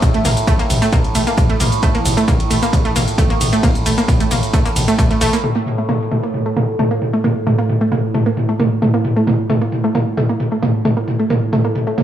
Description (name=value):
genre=driving peak-time techno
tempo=133 BPM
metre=4/4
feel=straight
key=unclear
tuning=A4 = 440 Hz
part: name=overtone-sweeping drone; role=drone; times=0.0-12.0 s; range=A2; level=-22 LUFS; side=right 1 dB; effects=chorus, built-in reverb, phaser, sidechain pumping
part: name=electronic kick drum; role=drums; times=0.0-5.1 s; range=none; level=-16 LUFS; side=equal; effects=none
part: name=techno drum kit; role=drums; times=0.0-12.0 s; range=hi-hat, ride cymbal, shaker, toms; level=-19 LUFS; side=equal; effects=low-pass filter on hats, low-pass filter on toms, low-pass filter on cymbals, low-pass filter on perc, low-pass filter on room
part: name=analog pluck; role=riff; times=0.1-12.0 s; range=A3 to Bb3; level=-19 LUFS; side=right 1 dB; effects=chorus, tube saturation, sidechain pumping, tape echo
part: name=saturated sub bass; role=bass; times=0.1-5.3 s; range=A1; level=-22 LUFS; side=equal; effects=sidechain pumping, low-pass filter
room=light reverb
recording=studio reverb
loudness=-14 LUFS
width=side -11 dB against mid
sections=0.0-5.4 A section; 5.4-12.0 B section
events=drop 0.0-5.4; filter sweep on synth arpeggio sound 5.4-12.0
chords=0.0 A5; 5.4 N.C.